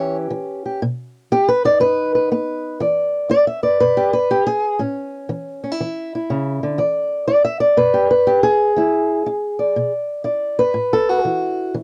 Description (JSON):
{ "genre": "acoustic country blues, solo or duo", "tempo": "121 BPM", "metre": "4/4", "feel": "swing 66% on 8ths", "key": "E mixolydian", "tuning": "A4 = 440 Hz", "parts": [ { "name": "fingerpicked old ladder-braced acoustic guitar", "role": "solo", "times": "0.0-11.8 s", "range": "F#2 to E5", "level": "-18 LUFS", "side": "equal", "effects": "none" } ], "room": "light reverb", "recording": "dry, close 1970s-style studio recording", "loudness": "-18 LUFS", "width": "mono", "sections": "0.0-2.8 A section; 2.8-11.8 B section", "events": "steel-string acoustic guitar solo 0.0-2.8", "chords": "0.0 A7; 0.8 B; 2.8 E5; 4.8 A; 6.8 E7; 10.7 A5", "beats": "0.32 | 0.81 1.31 1.80 2.30 | 2.80 3.29 3.79 4.29 | 4.79 5.28 5.78 6.28 | 6.78 7.27 7.77 8.27 | 8.76 9.26 9.75 10.25 | 10.74 11.24 11.73" }